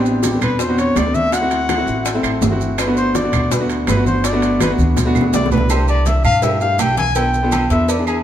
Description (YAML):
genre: Afro-Cuban jazz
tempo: 165 BPM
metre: 4/4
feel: straight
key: G major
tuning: A4 = 440 Hz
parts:
  - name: breathy trumpet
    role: melody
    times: 0.0-8.2 s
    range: E4 to Ab5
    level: -20 LUFS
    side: left 2 dB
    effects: none
  - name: warm concert grand piano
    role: accompaniment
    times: 0.0-8.2 s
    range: A3 to A4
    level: -19 LUFS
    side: equal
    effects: none
  - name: upright bass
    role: bass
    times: 0.0-8.2 s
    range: G1 to G2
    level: -21 LUFS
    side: equal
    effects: none
  - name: congas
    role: percussion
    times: 0.1-8.2 s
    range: none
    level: -24 LUFS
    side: equal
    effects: none
  - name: maracas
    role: percussion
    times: 0.1-8.2 s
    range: none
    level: -31 LUFS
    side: right 7 dB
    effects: none
  - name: bongos and cowbell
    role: percussion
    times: 0.2-8.1 s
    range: none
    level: -25 LUFS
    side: left 4 dB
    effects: none
  - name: timbales and agogo bells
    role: percussion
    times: 0.2-8.2 s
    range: none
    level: -25 LUFS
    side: right 5 dB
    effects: none
  - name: claves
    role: percussion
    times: 0.4-8.2 s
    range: none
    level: -31 LUFS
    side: right 8 dB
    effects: none
room: wet stone room reverb, RT60 1.3 s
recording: band playing live in one room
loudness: -14 LUFS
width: side -10 dB against mid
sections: 0.0-5.7 A section; 5.7-8.2 A section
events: trumpet solo 0.0-8.2; drum fill 4.6-5.7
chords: 0.0 Am11; 1.3 D9; 2.8 Gmaj9; 5.7 C6; 7.2 Bm7b5